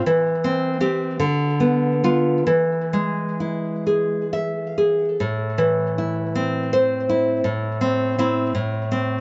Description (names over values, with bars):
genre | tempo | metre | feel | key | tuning
romantic piece for solo classical guitar | 42-56 BPM (dotted quarters) | 6/8 | rubato | A minor | A4 = 438 Hz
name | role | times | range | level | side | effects
nylon-string guitar | solo | 0.1-9.2 s | A2 to E5 | -21 LUFS | equal | tape echo
room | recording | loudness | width
light reverb | nothing above 7.7 kHz | -21 LUFS | mono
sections
0.0-5.2 A section; 5.2-9.2 A section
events
none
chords
0.0 C/E; 1.2 Bdim/D; 2.5 E; 5.2 Am; 8.6 F/A (rootless)